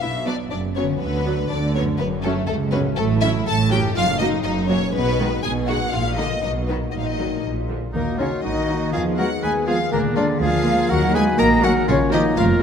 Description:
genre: cinematic, playful, whimsical film cue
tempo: 122 BPM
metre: 2/4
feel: straight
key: B minor, Eb minor from 4.0 s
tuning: A4 = 440 Hz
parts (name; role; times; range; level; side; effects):
- warm studio violin section; melody; 0.0-12.3 s; Db4 to A5; -27 LUFS; left 3 dB; none
- dark studio violin section; second line; 0.0-12.4 s; A3 to Bb5; -28 LUFS; left 2 dB; none
- concert harp; arpeggios; 0.0-12.6 s; F#2 to Eb5; -28 LUFS; left 9 dB; none
- rich studio double bass section; bass; 0.0-12.6 s; F1 to Eb2; -26 LUFS; right 4 dB; none
- warm studio cello section; bass; 0.0-12.5 s; C#2 to Bb3; -24 LUFS; right 4 dB; none
- warm studio viola section; accompaniment; 0.3-12.3 s; D3 to Eb4; -28 LUFS; right 1 dB; none
- warm clarinet; second line; 7.9-12.6 s; Bb3 to Bb4; -24 LUFS; left 1 dB; none
- warm oboe; second line; 7.9-12.6 s; D4 to Eb5; -29 LUFS; right 1 dB; none
- mellow French horn section; sustained chords; 7.9-12.6 s; Bb3 to Ab4; -26 LUFS; left 3 dB; none
- concert flute; second line; 8.0-12.4 s; Bb4 to Bb5; -24 LUFS; left 2 dB; none
room: moderate concert hall reverb, RT60 2.4 s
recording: none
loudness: -18 LUFS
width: side -7 dB against mid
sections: 0.0-7.9 A section; 7.9-12.6 B section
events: none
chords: 0.0 Bm; 1.0 Bm/D; 2.0 F#5; 3.0 F#m/A; 4.0 Ebm/Gb; 4.9 Abm/Cb; 5.9 Bb; 6.4 B; 6.9 Ebm/Bb; 7.4 Bb; 7.9 Ebm; 8.9 Fm7b5/Eb; 9.9 Bb7/D; 10.9 Ebm; 11.9 Bbm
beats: | 0.01 0.51 | 1.00 1.50 | 1.99 2.48 | 2.97 3.46 | 3.95 4.44 | 4.94 5.44 | 5.93 6.43 | 6.93 7.44 | 7.94 8.44 | 8.93 9.43 | 9.92 10.41 | 10.90 11.40 | 11.88 12.37

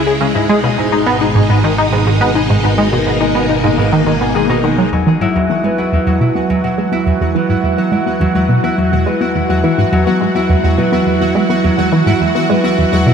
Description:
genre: ambient, sequencer-driven space music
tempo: 105 BPM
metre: 4/4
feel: straight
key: unclear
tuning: A4 = 440 Hz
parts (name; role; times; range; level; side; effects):
- phased string machine; sustained chords; 0.0-13.1 s; B2 to F#4; -19 LUFS; left 1 dB; ensemble chorus, phaser
- concert harp; arpeggios; 0.0-13.1 s; F#3 to G#5; -17 LUFS; moving between left 4 dB and right 4 dB; auto-pan, ping-pong delay
- analog drone; bass; 0.0-4.9 s; G#1 to C#2; -23 LUFS; equal; chorus
- tight sequenced synth; riff; 0.1-13.1 s; E2 to G#4; -14 LUFS; equal; chorus, ping-pong delay
- pulsing gated texture; texture; 4.9-13.1 s; F#4 to F#5; -20 LUFS; right 2 dB; chorus, built-in reverb
room: moderate plate reverb, RT60 3.1 s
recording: none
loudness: -11 LUFS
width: side -7 dB against mid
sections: 0.0-4.9 A section; 4.9-13.1 B section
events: fade-in on string machine 4.9-13.1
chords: 0.4 G#m; 4.9 Eadd9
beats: | 0.35 0.93 1.50 2.07 | 2.64 3.21 3.78 4.35 | 4.93 5.50 6.07 6.64 | 7.21 7.78 8.35 8.93 | 9.50 10.07 10.64 11.21 | 11.78 12.35 12.93

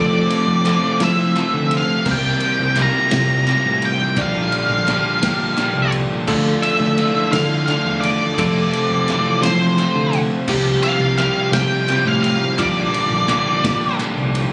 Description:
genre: indie rock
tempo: 57 BPM (dotted quarters)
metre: 6/8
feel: straight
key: unclear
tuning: A4 = 440 Hz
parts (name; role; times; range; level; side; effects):
- octave-fuzz lead guitar; melody; 0.0-14.0 s; C5 to Bb5; -22 LUFS; equal; distortion
- barky tine electric piano; second line; 0.0-14.3 s; F4 to D5; -30 LUFS; equal; none
- warm analog pad; sustained chords; 0.0-14.5 s; F3 to Bb5; -37 LUFS; equal; none
- electric guitar at the edge of break-up; riff; 0.0-14.5 s; F2 to G4; -24 LUFS; equal; analog chorus
- overdriven electric guitar; riff; 0.0-14.5 s; F2 to G4; -27 LUFS; equal; none
- growling fingered electric bass; bass; 0.0-14.4 s; A1 to F3; -24 LUFS; equal; overdrive
- vintage drum kit; drums; 0.3-14.5 s; crash cymbal, kick drum, ride cymbal, snare drum; -29 LUFS; equal; none
- group handclap; percussion; 0.7-14.4 s; none; -34 LUFS; equal; none
room: little or no reverb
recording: recorded on a phone in the room, club reverb, compression, nothing above 10.4 kHz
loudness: -18 LUFS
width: mono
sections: 0.0-14.5 A section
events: none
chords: 0.0 Fmaj7; 2.1 C7sus4; 4.2 Gm7/Bb; 6.3 Dmadd9; 8.4 Fmaj7; 10.5 C7sus4; 12.6 Gm7/Bb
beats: 1.01 | 2.06 3.12 | 4.17 5.22 | 6.28 7.33 | 8.38 9.44 | 10.49 11.54 | 12.60 13.65

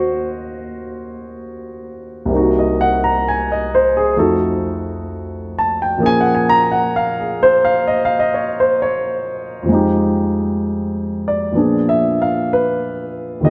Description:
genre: jazz ballad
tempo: 65 BPM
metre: 4/4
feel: swing 69% on 8ths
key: Bb minor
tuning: A4 = 440 Hz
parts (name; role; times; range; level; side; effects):
- dark grand piano; solo; 0.0-13.5 s; C2 to Bb5; -18 LUFS; equal; none
room: moderate plate reverb, RT60 2.9 s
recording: heard from further back in the room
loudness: -17 LUFS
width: mono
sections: 0.0-13.4 A section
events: none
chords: 0.0 Ebm9; 2.3 Cm7b5; 4.2 F7b9; 6.0 Bbm7; 9.7 Fm7; 11.5 Bb7b9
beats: 0.45 1.38 | 2.30 3.23 4.15 5.07 | 6.00 6.91 7.83 8.76 | 9.68 10.61 11.54 12.47 | 13.41

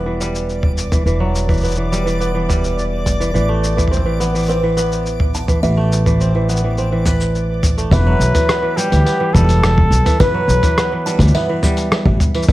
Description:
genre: folktronica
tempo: 105 BPM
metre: 4/4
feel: straight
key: E minor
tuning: A4 = 440 Hz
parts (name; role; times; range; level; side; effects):
- kora; arpeggios; 0.0-12.5 s; E3 to B4; -20 LUFS; right 1 dB; low-pass filter, tape echo
- upright bass; bass; 0.0-12.5 s; E1 to D2; -17 LUFS; equal; none
- backwards swelling texture; texture; 0.0-7.9 s; D5 to D6; -30 LUFS; equal; built-in reverb
- lo-fi sampler-style drum kit; drums; 0.2-12.5 s; hi-hat, rim click, shaker, toms; -18 LUFS; equal; small room ambience
- buzzing kalimba; second line; 4.5-11.6 s; B4 to A5; -24 LUFS; right 1 dB; ping-pong delay
- clear flugelhorn; melody; 7.9-12.5 s; G4 to B4; -20 LUFS; left 1 dB; tape echo
- kick drum; drums; 7.9-12.5 s; none; -17 LUFS; equal; small room ambience
room: light reverb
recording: vinyl crackle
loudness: -13 LUFS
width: side -16 dB against mid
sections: 0.0-7.9 A section; 7.9-12.5 B section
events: none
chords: 0.0 Emadd9; 3.3 Amadd9; 7.9 Emadd9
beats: 0.49 | 1.06 1.63 2.20 2.77 | 3.35 3.92 4.49 5.06 | 5.63 6.20 6.77 7.34 | 7.92 8.49 9.06 9.63 | 10.20 10.77 11.35 11.92 | 12.49

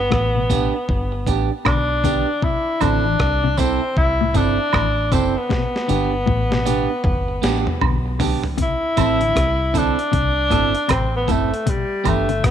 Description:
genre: roots reggae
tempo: 78 BPM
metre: 4/4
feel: swing 62% on 16ths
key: A minor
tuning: A4 = 439 Hz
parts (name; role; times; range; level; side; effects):
- warm tenor saxophone; melody; 0.0-12.5 s; G3 to E4; -21 LUFS; left 1 dB; none
- deep dub fingered electric bass; bass; 0.0-12.5 s; F#1 to C2; -22 LUFS; equal; none
- mellow electric guitar; arpeggios; 0.1-12.5 s; A2 to E3; -26 LUFS; left 10 dB; tremolo
- breakbeat sampler-style drum kit; drums; 0.1-12.5 s; hi-hat, kick drum, rim click, snare drum, toms; -23 LUFS; equal; none
- clean electric guitar; accompaniment; 0.5-12.3 s; B3 to A4; -25 LUFS; right 12 dB; none
- tambourine and woodblock; percussion; 0.5-12.3 s; none; -28 LUFS; right 11 dB; none
room: light reverb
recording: 1960s-style stereo with parts hard left and right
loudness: -17 LUFS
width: side -9 dB against mid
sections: 0.0-8.6 A section; 8.6-12.5 B section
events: drum fill 5.5-8.6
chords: 0.0 G; 2.4 Am; 5.5 G; 8.6 Am; 11.7 G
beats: 0.12 0.89 1.66 | 2.43 3.20 3.97 4.74 | 5.51 6.28 7.05 7.82 | 8.59 9.36 10.13 10.90 | 11.67 12.44

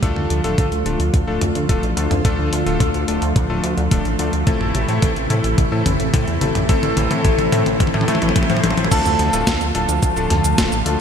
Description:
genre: synthwave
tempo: 108 BPM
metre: 4/4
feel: straight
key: D minor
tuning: A4 = 443 Hz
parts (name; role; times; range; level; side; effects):
- lush unison pad; sustained chords; 0.0-11.0 s; C3 to F4; -23 LUFS; right 1 dB; chorus, sidechain pumping
- bright electric grand piano; stabs; 0.0-11.0 s; A3 to C5; -22 LUFS; left 3 dB; ping-pong delay
- chorused synth bass; bass; 0.0-11.0 s; D1 to A2; -22 LUFS; equal; sidechain pumping
- clean 12-bit digital drum machine; drums; 0.0-11.0 s; crash cymbal, hi-hat, shaker, snare drum, toms; -23 LUFS; left 1 dB; gated reverb
- electronic kick drum; drums; 0.0-10.7 s; none; -19 LUFS; equal; none
- soft octave-layered synth lead; melody; 8.9-11.0 s; A5; -23 LUFS; equal; chorus, ping-pong delay
room: wet lush hall reverb, RT60 2.8 s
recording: bright 1980s-style digital production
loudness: -15 LUFS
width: side -7 dB against mid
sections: 0.0-8.9 A section; 8.9-11.0 B section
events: drum fill 0.0-8.9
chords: 0.0 Dm; 4.5 Am; 8.9 Dm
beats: | 0.03 0.58 1.14 1.69 | 2.25 2.80 3.36 3.92 | 4.47 5.03 5.58 6.14 | 6.69 7.25 7.80 8.36 | 8.91 9.47 10.03 10.58

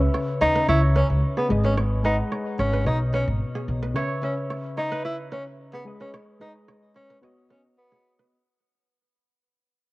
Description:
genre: afrobeats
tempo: 110 BPM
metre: 4/4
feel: straight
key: unclear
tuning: A4 = 440 Hz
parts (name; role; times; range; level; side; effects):
- soft electric-piano-like synth keys; accompaniment; 0.0-8.3 s; B2 to F#5; -29 LUFS; left 1 dB; chorus, cassette tape
- upright bass; bass; 0.0-3.9 s; G#1 to D#2; -22 LUFS; equal; none
- kora; riff; 0.1-8.3 s; G#4 to C#5; -32 LUFS; right 3 dB; cassette tape
- breathy tenor saxophone; melody; 0.4-8.2 s; B3 to E4; -25 LUFS; equal; cassette tape, tape echo
room: moderate spring reverb, RT60 2.0 s, small room ambience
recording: home recording on cassette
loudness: -21 LUFS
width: side -20 dB against mid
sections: 0.0-8.3 A section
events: fade-out 0.0-8.3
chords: 0.0 C#m7; 1.5 G#m; 2.9 Badd9; 4.0 C#m7; 5.9 G#m; 7.2 Badd9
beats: 0.14 0.68 1.23 | 1.77 2.32 2.87 3.41 | 3.96 4.50 5.05 5.59 | 6.14 6.68 7.23 7.77

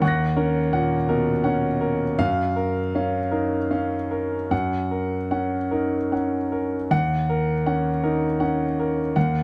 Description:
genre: neoclassical minimalist piano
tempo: 50-56 BPM (dotted quarters)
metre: 6/8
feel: rubato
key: unclear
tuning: A4 = 441 Hz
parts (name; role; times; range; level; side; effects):
- clear concert grand piano; solo; 0.0-9.4 s; D#2 to A#6; -23 LUFS; equal; none
room: light reverb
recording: none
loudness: -23 LUFS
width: mono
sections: 0.0-6.9 A section; 6.9-9.4 B section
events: none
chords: 0.0 D#m7; 2.2 F#maj7; 4.5 F#; 6.9 D#m7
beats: | 0.01 1.09 | 2.20 3.33 | 4.52 5.72 | 6.91 8.03 | 9.15

